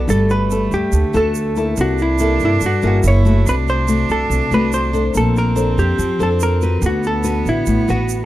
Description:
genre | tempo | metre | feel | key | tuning
bossa nova | 142 BPM | 4/4 | straight | unclear | A4 = 441 Hz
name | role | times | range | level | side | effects
hollow-body jazz guitar | melody | 0.0-8.2 s | E4 to D5 | -20 LUFS | right 1 dB | none
bright cello | second line | 0.0-8.2 s | A3 to E4 | -24 LUFS | right 4 dB | none
nylon-string guitar | accompaniment | 0.0-8.2 s | G2 to C5 | -20 LUFS | left 2 dB | none
upright bass | bass | 0.0-8.2 s | F#1 to G2 | -18 LUFS | equal | none
egg shaker | percussion | 0.1-8.2 s | none | -33 LUFS | right 11 dB | none
room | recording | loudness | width
studio reverb | dry, close 1970s-style studio recording | -14 LUFS | side -14 dB against mid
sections
0.0-8.2 A section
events
none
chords
0.1 Gmaj9; 1.8 C13; 3.0 F#9; 3.5 D7/C; 5.1 Bbmaj9; 6.8 D69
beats
| 0.09 0.51 0.93 1.35 | 1.77 2.19 2.61 3.03 | 3.45 3.87 4.29 4.72 | 5.14 5.56 5.98 6.40 | 6.82 7.24 7.66 8.09

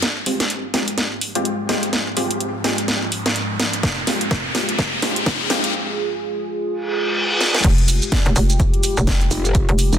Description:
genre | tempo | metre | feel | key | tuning
bass house | 126 BPM | 4/4 | swing 58% on 16ths | F minor | A4 = 440 Hz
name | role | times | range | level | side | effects
dark analog pad | sustained chords | 0.0-10.0 s | Ab3 to Ab4 | -27 LUFS | right 1 dB | chorus, phaser, sidechain pumping
garage drum kit | drums | 0.0-10.0 s | crash cymbal, hi-hat, shaker, snare drum | -21 LUFS | equal | soft clipping on snare, low-pass filter on snare, low-pass filter on hats, low-pass filter on cymbals, low-pass filter on perc
riser and reverse cymbal | sound effects | 0.0-7.6 s | none | -24 LUFS | left 1 dB | none
orchestra-hit-like synth stab | stabs | 0.3-5.7 s | Ab3 to G4 | -24 LUFS | left 1 dB | built-in reverb, vintage 12-bit sampler grit, sidechain pumping, digital delay
electronic kick drum | drums | 3.8-9.7 s | none | -20 LUFS | equal | none
hollow knocking FM bass | bass | 7.6-9.9 s | F1 | -18 LUFS | equal | overdrive, sidechain pumping
growl bass | bass | 9.3-10.0 s | F1 | -19 LUFS | equal | chorus, tube saturation, sidechain pumping
room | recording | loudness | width
moderate digital room reverb, RT60 1.3 s, digital ambience | dense, heavily limited modern master, high-pass filter | -17 LUFS | side -10 dB against mid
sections
0.0-7.6 A section; 7.6-10.0 B section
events
build-up 0.0-7.6; drum fill 0.0-5.7, 7.4; riser 0.0-5.7; filter sweep on synth stab 0.0-7.6; filter sweep on analog synth pad 0.0-7.6; reverse cymbal 6.8-7.6; drop 7.6-10.0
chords
0.0 Fmadd9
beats
| 0.03 0.50 0.98 1.45 | 1.93 2.40 2.88 3.36 | 3.83 4.31 4.79 5.26 | 5.74 6.21 6.69 7.17 | 7.64 8.12 8.60 9.07 | 9.55

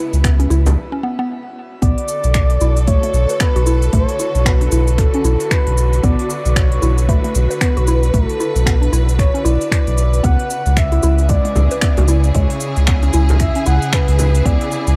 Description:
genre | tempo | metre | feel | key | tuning
organic downtempo | 114 BPM | 4/4 | swing 59% on 16ths | B dorian | A4 = 441 Hz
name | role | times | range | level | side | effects
breathy flute-like synth lead | melody | 0.0-15.0 s | A4 to F#5 | -25 LUFS | equal | subtle chorus, analog delay, shimmer reverb
clear studio string section | sustained chords | 0.0-15.0 s | C#3 to B4 | -28 LUFS | equal | sidechain pumping, shimmer reverb
mallet-like synth pluck | arpeggios | 0.0-14.6 s | G#3 to B4 | -26 LUFS | equal | chorus, phaser, tape echo, shimmer reverb
bronze singing bowl | texture | 0.0-0.8 s | none | barely audible | none | none
round analog bass | bass | 0.1-15.0 s | B1 to C#2 | -17 LUFS | equal | sidechain pumping
organic electronic drum kit | drums | 0.1-15.0 s | finger snaps, hi-hat, shaker | -26 LUFS | equal | overdrive
electronic kick drum | drums | 0.2-14.6 s | none | -19 LUFS | equal | overdrive
frame drum | percussion | 0.7, 11.6-14.3 s | none | -24 LUFS | equal | none
room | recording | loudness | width
light reverb, digital ambience | dry, gritty hardware recording | -15 LUFS | mono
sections
0.0-1.8 A section; 1.8-15.0 A section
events
break 0.8-1.8; filter sweep on synth pluck 1.8-15.0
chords
0.0 C#m7; 1.8 Bm7; 10.2 C#m7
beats
0.24 0.77 1.29 | 1.82 2.35 2.87 3.40 | 3.93 4.45 4.98 5.51 | 6.03 6.56 7.08 7.61 | 8.14 8.66 9.19 9.72 | 10.24 10.77 11.29 11.82 | 12.35 12.87 13.40 13.93 | 14.45

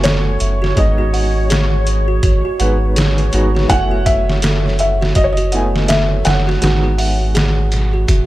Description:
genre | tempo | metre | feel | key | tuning
trip hop | 82 BPM | 4/4 | swing 60% on 16ths | unclear | A4 = 440 Hz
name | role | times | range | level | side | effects
felt-muted upright piano | melody | 0.0-8.3 s | C#5 to F#5 | -21 LUFS | equal | tape echo
dark upright piano | accompaniment | 0.0-8.3 s | G#3 to G#5 | -24 LUFS | right 1 dB | tremolo, tape echo
deep dark ambient pad | sustained chords | 0.0-8.3 s | C#5 | -26 LUFS | left 1 dB | chorus, built-in reverb
music box | arpeggios | 0.0-8.3 s | F#4 to F#5 | -23 LUFS | right 4 dB | tape echo
soft dub sub bass | bass | 0.0-8.3 s | F#1 to G#1 | -17 LUFS | equal | none
trip hop sampler-style drum kit | drums | 0.0-8.3 s | hi-hat, kick drum, snare drum | -17 LUFS | equal | overdrive
room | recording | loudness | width
studio reverb | none | -13 LUFS | side -16 dB against mid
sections
0.0-8.3 A section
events
none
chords
0.0 F#m11; 0.8 G#m7; 3.7 F#m11; 6.6 G#m7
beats
0.04 | 0.77 1.50 2.23 2.96 | 3.69 4.43 5.16 5.89 | 6.62 7.35 8.09

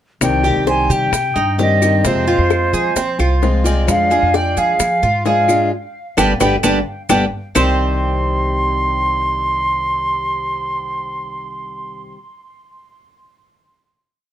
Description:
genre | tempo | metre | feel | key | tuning
latin, Cuban son and guajira | 131 BPM | 4/4 | straight | C minor | A4 = 440 Hz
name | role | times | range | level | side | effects
reedy concert flute | melody | 0.2-12.0 s | C5 to C6 | -18 LUFS | equal | tape echo
picked steel-string acoustic guitar | accompaniment | 0.2-12.2 s | C3 to G4 | -21 LUFS | left 3 dB | none
upright bass | bass | 0.2-12.1 s | G1 to F3 | -20 LUFS | equal | none
bongos | percussion | 0.2-7.7 s | none | -23 LUFS | left 8 dB | none
claves | percussion | 0.2-7.7 s | none | -29 LUFS | left 6 dB | none
maracas | percussion | 0.2-7.7 s | none | -27 LUFS | right 5 dB | none
Cuban tres | arpeggios | 0.4-12.1 s | C4 to D5 | -21 LUFS | right 5 dB | none
room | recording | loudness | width
light reverb | none | -14 LUFS | side -10 dB against mid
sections
0.2-7.6 A section; 7.6-11.2 final chord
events
band accent 5.7-7.6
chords
0.2 Cm; 2.0 Fm; 3.9 Ddim/F; 5.7 G; 7.6 Cm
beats
| 0.21 0.67 1.13 1.59 | 2.05 2.51 2.96 3.42 | 3.88 4.34 4.80 5.26 | 5.72 6.18 6.64 7.10 | 7.56 8.02 8.48 8.94 | 9.40 9.86 10.33 10.79

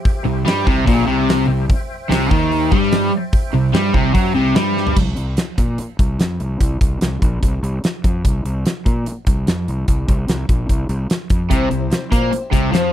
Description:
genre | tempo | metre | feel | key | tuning
classic rock | 147 BPM | 4/4 | straight | C major | A4 = 443 Hz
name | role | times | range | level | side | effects
tonewheel organ | sustained chords | 0.0-4.9 s | G4 to G5 | -31 LUFS | equal | slow rotary speaker, overdrive, chorus vibrato
huge arena drum kit | drums | 0.1-12.8 s | crash cymbal, hi-hat, kick drum, snare drum, toms | -18 LUFS | equal | none
overdriven electric guitar | riff | 0.2-5.0, 11.5-12.9 s | Bb2 to Bb3 | -20 LUFS | left 10 dB | none
fuzz fingered electric bass | bass | 0.2-12.9 s | Bb1 to Bb2 | -21 LUFS | equal | overdrive
crunchy overdriven guitar | riff | 0.3-5.0, 11.5-12.9 s | Bb2 to Bb3 | -21 LUFS | right 12 dB | none
thick fuzz guitar | riff | 0.3-5.0 s | Bb2 to G3 | -22 LUFS | equal | distortion
picked twelve-string acoustic guitar | accompaniment | 11.5-12.9 s | C3 to C5 | -24 LUFS | left 3 dB | none
room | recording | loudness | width
little or no reverb | dry, close 1970s-style studio recording | -15 LUFS | side -11 dB against mid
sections
0.0-5.0 A section; 5.0-12.9 B section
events
drum fill 4.8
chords
0.0 C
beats
| 0.05 0.46 0.87 1.28 | 1.69 2.10 2.51 2.92 | 3.33 3.74 4.15 4.56 | 4.97 5.38 5.79 6.20 | 6.61 7.01 7.42 7.83 | 8.24 8.65 9.06 9.47 | 9.87 10.28 10.69 11.10 | 11.50 11.91 12.32 12.72

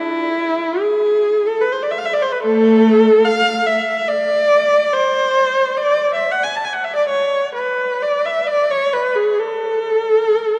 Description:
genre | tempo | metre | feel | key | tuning
classical, free, expressive piece for unaccompanied viola | 63-76 BPM | 4/4 | rubato | A minor | A4 = 444 Hz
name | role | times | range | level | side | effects
warm viola | solo | 0.0-10.6 s | A3 to A5 | -16 LUFS | equal | none
room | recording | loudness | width
wet church reverb, RT60 3.3 s | dark, warm production | -16 LUFS | mono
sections
0.0-10.6 A section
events
none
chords
none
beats
0.82 1.62 | 2.42 3.25 4.07 4.92 | 5.77 6.64 7.56 8.49 | 9.39 10.34

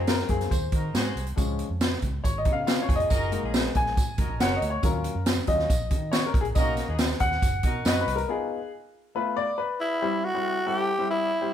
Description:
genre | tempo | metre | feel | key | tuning
uptempo 1960s-style soul | 139 BPM | 4/4 | straight | F# major | A4 = 440 Hz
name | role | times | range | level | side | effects
warm horn section | second line | 0.0-8.2 s | B3 to C#5 | -34 LUFS | left 1 dB | none
warm upright piano | accompaniment | 0.0-11.5 s | E#3 to G#5 | -28 LUFS | left 3 dB | none
vintage muted fingered electric bass | bass | 0.0-8.2 s | E#1 to D#3 | -31 LUFS | equal | none
swinging big-band drum kit | drums | 0.1-8.3 s | hi-hat, kick drum, snare drum | -25 LUFS | right 1 dB | none
tambourine | percussion | 0.1-8.0 s | none | -41 LUFS | right 5 dB | none
electric guitar through a small old amp | riff | 2.5-3.3 s | B3 to G#4 | -36 LUFS | left 5 dB | none
growling tenor saxophone | melody | 9.8-11.5 s | E4 to G4 | -25 LUFS | equal | none
room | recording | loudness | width
light reverb | band playing live in one room | -23 LUFS | side -10 dB against mid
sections
0.0-10.0 A section; 10.0-11.5 B section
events
upright piano solo 0.0-10.0; break 8.3-10.0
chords
0.0 G#7; 1.4 C#; 3.1 F#6; 4.8 D#m7; 6.6 Bmaj7; 8.3 B6; 9.2 Dm69/A; 10.0 C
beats
0.08 0.51 0.94 | 1.38 1.81 2.24 2.67 | 3.10 3.54 3.97 4.40 | 4.83 5.27 5.70 6.13 | 6.56 7.00 7.43 7.86 | 8.29 8.72 9.15 9.59 | 10.02 10.45 10.88 11.31

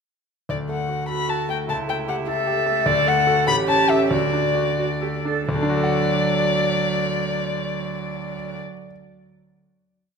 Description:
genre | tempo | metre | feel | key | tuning
quick classical-period movement for piano trio | 83-102 BPM (dotted quarters) | 6/8 | straight | D major | A4 = 440 Hz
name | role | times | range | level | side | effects
dark violin | melody | 0.5-8.6 s | D5 to B5 | -22 LUFS | left 4 dB | none
bright concert grand piano | accompaniment | 0.5-8.9 s | A1 to F#5 | -24 LUFS | equal | none
rich cello | second line | 1.1-8.6 s | F#3 to A4 | -26 LUFS | right 8 dB | none
room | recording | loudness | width
wet recital hall reverb, RT60 1.7 s | minimal, uncompressed stereo recording | -19 LUFS | side -6 dB against mid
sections
0.5-5.5 A section; 5.5-8.3 final chord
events
slowing down 2.3-5.5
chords
0.5 D; 1.7 A7/C#; 2.9 D; 3.5 A7; 4.1 D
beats
| 0.50 1.09 | 1.69 2.28 | 2.87 3.48 | 4.11 4.78 | 5.49 6.20 | 6.91 7.62

